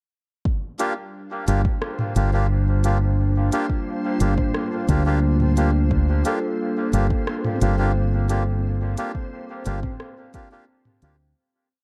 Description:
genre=ambient dub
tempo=88 BPM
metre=4/4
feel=straight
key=G minor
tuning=A4 = 439 Hz
part: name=warbly tape-like pad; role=sustained chords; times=1.2-11.4 s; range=G3 to F4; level=-30 LUFS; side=equal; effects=chorus, built-in reverb
part: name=electronic kick drum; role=drums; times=0.5-10.5 s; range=none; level=-27 LUFS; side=equal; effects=overdrive
part: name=backwards swelling texture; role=texture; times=1.7-11.4 s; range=C5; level=-40 LUFS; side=equal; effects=built-in reverb
part: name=melodica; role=stabs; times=0.8-11.2 s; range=Bb3 to G4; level=-31 LUFS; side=equal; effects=dub echo
part: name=organic electronic drum kit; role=drums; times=0.8-11.2 s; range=hi-hat, rim click, toms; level=-33 LUFS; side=equal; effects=overdrive, dub echo
part: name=fingered electric bass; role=bass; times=1.5-11.3 s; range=G1 to D2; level=-22 LUFS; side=equal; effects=none
part: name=handpan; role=arpeggios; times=6.3-11.7 s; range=C4 to A4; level=-35 LUFS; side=equal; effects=vintage 12-bit sampler grit, tape echo
room=light reverb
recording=dark, warm production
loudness=-22 LUFS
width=mono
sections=0.5-11.4 groove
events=fade-out 7.7-11.4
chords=0.5 Gm7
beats=| 0.46 1.14 1.82 2.50 | 3.18 3.87 4.55 5.23 | 5.91 6.59 7.27 7.96 | 8.64 9.32 10.00 10.68

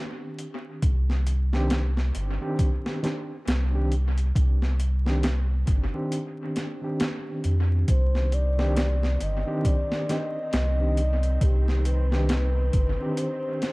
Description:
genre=trip hop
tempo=68 BPM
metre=4/4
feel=swing 59% on 16ths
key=C harmonic minor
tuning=A4 = 440 Hz
part: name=overdriven reed electric piano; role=accompaniment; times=0.0-13.7 s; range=Eb3 to G4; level=-31 LUFS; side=equal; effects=fast tremolo, vintage 12-bit sampler grit, low-pass filter, tape echo
part: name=boom bap sampler-style drum kit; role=drums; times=0.4-13.7 s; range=hi-hat, kick drum, snare drum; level=-27 LUFS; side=equal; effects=overdrive, dub echo
part: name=warm sub bass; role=bass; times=0.8-13.0 s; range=G1 to F2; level=-23 LUFS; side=equal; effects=none
part: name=pure breathy sine lead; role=melody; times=7.9-13.7 s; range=G4 to Eb5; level=-31 LUFS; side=left 1 dB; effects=chorus, tape echo
part: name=muted studio string section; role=sustained chords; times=7.9-13.7 s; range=Eb3 to C4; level=-37 LUFS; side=equal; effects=none
room=little or no reverb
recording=echo-heavy mix, vinyl crackle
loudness=-22 LUFS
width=side -24 dB against mid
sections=0.0-13.7 A section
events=filter sweep on reed electric piano 0.0-13.7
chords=0.0 Cmadd9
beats=| 0.82 1.71 2.59 3.47 | 4.35 5.24 6.12 7.00 | 7.88 8.77 9.65 10.53 | 11.41 12.29 13.18

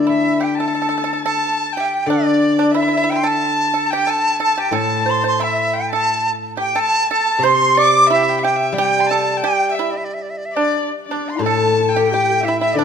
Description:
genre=chinese traditional, Chinese chamber ensemble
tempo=90 BPM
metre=2/4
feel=straight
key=D shang mode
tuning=A4 = 441 Hz
part: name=bright dizi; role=melody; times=0.0-12.8 s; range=D5 to D6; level=-18 LUFS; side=right 2 dB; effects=none
part: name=steel-string zither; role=accompaniment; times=0.0-12.8 s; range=A2 to A4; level=-21 LUFS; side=left 3 dB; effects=none
part: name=clear erhu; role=second line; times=0.1-12.8 s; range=D5 to D6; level=-22 LUFS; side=left 6 dB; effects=none
part: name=pipa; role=second line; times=0.1-12.8 s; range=D4 to D5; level=-22 LUFS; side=right 8 dB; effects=none
part: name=dark horsehead fiddle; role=second line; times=11.1-12.8 s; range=D4 to A4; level=-19 LUFS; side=left 6 dB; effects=none
room=moderate recital hall reverb, RT60 1.7 s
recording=none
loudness=-15 LUFS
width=side -7 dB against mid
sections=0.8-11.4 A section; 11.4-12.8 B section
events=none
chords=none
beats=0.09 | 0.76 1.43 | 2.09 2.75 | 3.42 4.08 | 4.74 5.41 | 6.09 6.76 | 7.43 8.10 | 8.76 9.41 | 10.07 10.74 | 11.42 12.10 | 12.77

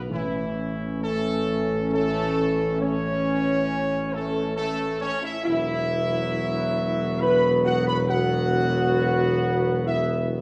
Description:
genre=classical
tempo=68 BPM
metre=3/4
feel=straight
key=unclear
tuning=A4 = 440 Hz
part: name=mellow French horn section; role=sustained chords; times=0.0-10.3 s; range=E3 to B4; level=-29 LUFS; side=equal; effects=none
part: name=warm trombone section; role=sustained chords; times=0.0-10.4 s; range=E3 to C#4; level=-33 LUFS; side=equal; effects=none
part: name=mellow tuba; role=bass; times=0.0-10.4 s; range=E1 to B1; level=-29 LUFS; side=equal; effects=none
part: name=dark trumpet section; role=melody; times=0.1-10.3 s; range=E4 to B5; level=-30 LUFS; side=equal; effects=none
room=wet recital hall reverb, RT60 1.6 s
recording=recorded in a church or concert hall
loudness=-24 LUFS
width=mono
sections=0.0-10.4 A section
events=none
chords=0.1 A; 5.5 Esus2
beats=| 0.11 1.02 1.92 | 2.82 3.69 4.58 | 5.45 6.34 7.22 | 8.09 8.97 9.86

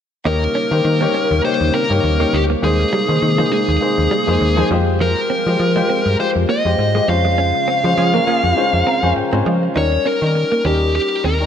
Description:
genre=pop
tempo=101 BPM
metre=4/4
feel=swing 55% on 16ths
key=Eb mixolydian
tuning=A4 = 439 Hz
part: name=clear grand piano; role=accompaniment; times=0.2-11.5 s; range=G3 to Bb5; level=-21 LUFS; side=left 4 dB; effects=none
part: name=high-gain lead guitar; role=melody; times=0.3-11.5 s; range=G4 to F5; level=-18 LUFS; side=equal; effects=distortion, ping-pong delay
part: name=string machine, cellos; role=sustained chords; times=0.3-9.7 s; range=C3 to C5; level=-25 LUFS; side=equal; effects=ensemble chorus
part: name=direct-recorded clean electric guitar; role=riff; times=0.3-11.4 s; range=F3 to Eb4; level=-25 LUFS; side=right 5 dB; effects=lush chorus, ping-pong delay
part: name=slap-like FM bass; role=bass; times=0.3-11.5 s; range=D2 to F3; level=-18 LUFS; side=equal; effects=none
part: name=funky polysynth comp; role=stabs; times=8.0-8.7 s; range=Db4 to Ab4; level=-26 LUFS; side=right 4 dB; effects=chorus, ping-pong delay
room=moderate lush hall reverb, RT60 2.4 s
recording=none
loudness=-14 LUFS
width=side -8 dB against mid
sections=0.3-9.8 A section; 9.8-11.5 B section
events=band accent 7.4-9.8; grand piano fill 8.6-9.8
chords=0.3 Eb7; 2.6 Abadd9; 4.7 Fmadd9; 7.1 Dbmaj7; 9.8 Eb7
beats=| 0.25 0.85 1.44 2.04 | 2.63 3.22 3.82 4.41 | 5.01 5.60 6.20 6.79 | 7.38 7.98 8.57 9.16 | 9.76 10.35 10.95

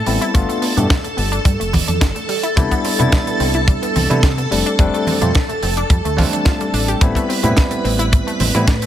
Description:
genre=nu-disco, nu disco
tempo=108 BPM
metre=4/4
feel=straight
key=unclear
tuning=A4 = 440 Hz
part: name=string machine, full ensemble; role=sustained chords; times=0.0-8.9 s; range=A4 to B5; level=-22 LUFS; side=right 1 dB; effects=ensemble chorus, sidechain pumping
part: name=barky tine electric piano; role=accompaniment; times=0.1-8.7 s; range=G3 to G4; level=-21 LUFS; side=moving between left 4 dB and right 3 dB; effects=auto-pan, sidechain pumping, low-pass filter, digital delay
part: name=wide unison pluck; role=arpeggios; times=0.1-8.9 s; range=G3 to G4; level=-26 LUFS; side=left 3 dB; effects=cassette tape, sidechain pumping, digital delay
part: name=fingered electric bass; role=bass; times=0.1-8.9 s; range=F1 to C3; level=-20 LUFS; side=equal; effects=none
part: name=tight funk drum kit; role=drums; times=0.1-8.9 s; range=hi-hat, snare drum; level=-24 LUFS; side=right 4 dB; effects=none
part: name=kick drum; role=drums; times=0.3-8.8 s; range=none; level=-15 LUFS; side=equal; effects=none
part: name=congas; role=percussion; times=0.8-8.5 s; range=none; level=-24 LUFS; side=right 2 dB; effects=none
room=light reverb, small room ambience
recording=none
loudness=-14 LUFS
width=side -11 dB against mid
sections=0.0-8.9 A section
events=none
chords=0.3 G9; 2.3 Cmaj7; 4.5 F69; 7.0 Am7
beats=| 0.35 0.90 1.46 2.01 | 2.57 3.12 3.68 4.24 | 4.79 5.35 5.90 6.46 | 7.01 7.57 8.12 8.68

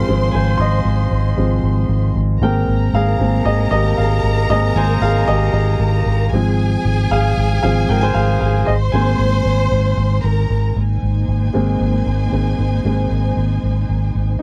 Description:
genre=piano-driven pop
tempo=115 BPM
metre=4/4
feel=straight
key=Ab major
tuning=A4 = 436 Hz
part: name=rich studio violin section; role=second line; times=0.0-10.7 s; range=Ab4 to C6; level=-26 LUFS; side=equal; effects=none
part: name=clear baby grand piano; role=accompaniment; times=0.0-14.4 s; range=F3 to C6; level=-22 LUFS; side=equal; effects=none
part: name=vintage muted fingered electric bass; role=bass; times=0.0-14.4 s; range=Ab1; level=-19 LUFS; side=equal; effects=none
part: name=dark studio string section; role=sustained chords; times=10.8-14.4 s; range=Bb3 to Ab5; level=-28 LUFS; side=equal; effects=none
room=little or no reverb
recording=dry, close 1970s-style studio recording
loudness=-17 LUFS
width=mono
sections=0.0-10.8 A section; 10.8-14.4 B section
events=grand piano solo 0.0-10.8, 10.8-14.4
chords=0.0 Fm/Ab; 8.7 Abadd9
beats=| 0.34 0.86 1.38 1.90 | 2.42 2.94 3.47 3.99 | 4.51 5.03 5.55 6.07 | 6.59 7.11 7.63 8.15 | 8.68 9.20 9.72 10.24 | 10.76 11.28 11.80 12.32 | 12.84 13.37 13.89 14.41

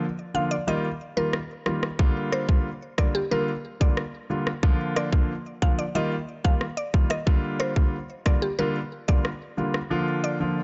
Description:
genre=dancehall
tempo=91 BPM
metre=4/4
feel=straight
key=G minor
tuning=A4 = 441 Hz
part: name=warm concert grand piano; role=accompaniment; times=0.0-10.6 s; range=D3 to F4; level=-30 LUFS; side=equal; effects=none
part: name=mallet-like synth pluck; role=melody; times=0.3-10.3 s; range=G4 to F5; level=-33 LUFS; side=equal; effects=chorus, delay
part: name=island pop drum kit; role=drums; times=1.3-9.9 s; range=kick drum, rim click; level=-25 LUFS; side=equal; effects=none
room=light reverb, digital ambience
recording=dark, warm production, nothing above 7.9 kHz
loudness=-26 LUFS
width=mono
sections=0.0-10.6 A section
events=break 0.0-2.0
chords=0.0 Bb; 0.7 Ebadd9; 2.0 Gm7; 4.6 Bb; 5.9 Ebadd9; 7.3 Gm7; 9.9 Bb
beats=0.01 0.67 1.33 | 1.99 2.65 3.31 3.97 | 4.63 5.29 5.95 6.61 | 7.27 7.93 8.59 9.25 | 9.90 10.56

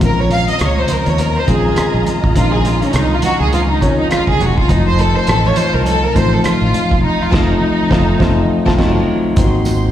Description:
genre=lush 1970s-style soul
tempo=103 BPM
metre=4/4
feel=swing 58% on 16ths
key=Bb minor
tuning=A4 = 439 Hz
part: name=warm studio violin section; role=melody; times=0.0-8.8 s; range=Db4 to F5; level=-18 LUFS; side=equal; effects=slapback echo
part: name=warm studio string section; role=second line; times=0.0-9.9 s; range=F4 to C6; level=-25 LUFS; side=right 1 dB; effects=slapback echo
part: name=tine electric piano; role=accompaniment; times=0.0-9.9 s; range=Eb3 to Gb4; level=-18 LUFS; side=left 2 dB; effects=slapback echo
part: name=fingered electric bass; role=bass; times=0.0-9.9 s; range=E1 to Eb2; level=-16 LUFS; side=equal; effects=none
part: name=cloth-damped thuddy drum kit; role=drums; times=0.0-9.8 s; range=crash cymbal, hi-hat, kick drum, rim click, snare drum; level=-18 LUFS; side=right 1 dB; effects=none
part: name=congas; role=percussion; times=0.0-9.8 s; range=none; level=-26 LUFS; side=right 9 dB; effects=none
part: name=tambourine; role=percussion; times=9.4-9.8 s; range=none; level=-34 LUFS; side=right 3 dB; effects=slapback echo
room=light reverb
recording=live gig heard through the venue's PA, recital hall reverb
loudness=-12 LUFS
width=side -11 dB against mid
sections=0.0-9.4 A section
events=band accent 7.0-9.4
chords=0.0 Bbm11; 4.7 F7; 8.8 F7b9; 9.4 Ab9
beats=| 0.02 0.60 1.19 1.77 | 2.35 2.94 3.52 4.11 | 4.69 5.28 5.86 6.45 | 7.03 7.62 8.20 8.79 | 9.37

